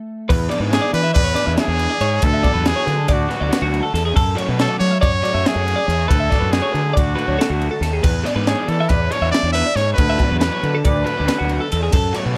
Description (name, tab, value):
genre	math rock and midwest emo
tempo	278 BPM (eighths)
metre	9/8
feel	straight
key	unclear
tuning	A4 = 440 Hz
part	twelve-string electric guitar	arpeggios	0.3-12.4 s	F#4 to E5	-26 LUFS	equal	none
part	fuzz fingered electric bass	bass	0.3-12.4 s	D2 to F#3	-23 LUFS	equal	overdrive
part	crisp fusion drum kit	drums	0.3-12.2 s	crash cymbal, kick drum, ride cymbal, snare drum	-23 LUFS	equal	none
part	raw garage guitar	riff	0.5-12.4 s	E3 to G#4	-28 LUFS	equal	overdrive
part	bright trumpet	melody	0.7-11.7 s	F#4 to E5	-24 LUFS	equal	none
room	little or no reverb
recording	none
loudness	-18 LUFS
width	mono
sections	0.3-12.4 A section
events	stop 0.0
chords	0.3 E7; 2.2 Bm7/D; 4.2 F#m7; 6.1 D; 8.0 E7; 10.0 Bm7/D